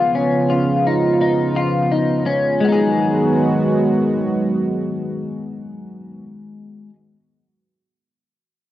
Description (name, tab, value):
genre	dream pop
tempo	85 BPM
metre	4/4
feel	straight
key	G# dorian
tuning	A4 = 442 Hz
part	warm analog pad	sustained chords	0.0-6.2 s	C#3 to F#4	-18 LUFS	right 2 dB	chorus, cassette tape
part	clean electric guitar	arpeggios	0.0-7.0 s	G#3 to G#4	-20 LUFS	left 4 dB	analog chorus, cassette tape, analog delay
room	moderate studio reverb, RT60 0.5 s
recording	home recording on cassette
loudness	-15 LUFS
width	side -13 dB against mid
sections	0.0-2.6 A section; 2.6-5.4 B section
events	none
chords	0.0 C#7; 2.6 G#m7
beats	0.49 1.20 1.91 | 2.61 3.32 4.02 4.73